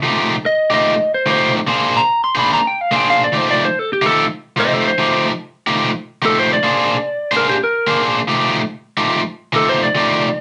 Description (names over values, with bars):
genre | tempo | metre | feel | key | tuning
blues | 145 BPM | 4/4 | swing 65% on 8ths | F mixolydian | A4 = 440 Hz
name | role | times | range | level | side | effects
lightly driven lead guitar | melody | 0.0-10.4 s | G4 to C6 | -18 LUFS | equal | none
cranked stack guitar | riff | 0.0-10.3 s | F3 to C5 | -18 LUFS | equal | overdrive
room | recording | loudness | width
wet studio ambience, RT60 0.5 s | nothing above 10.7 kHz | -16 LUFS | mono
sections
0.0-10.4 A section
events
lead electric guitar solo 0.0-10.4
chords
0.0 F9; 1.7 Bb9; 3.3 F9; 6.6 Bb9; 8.3 F9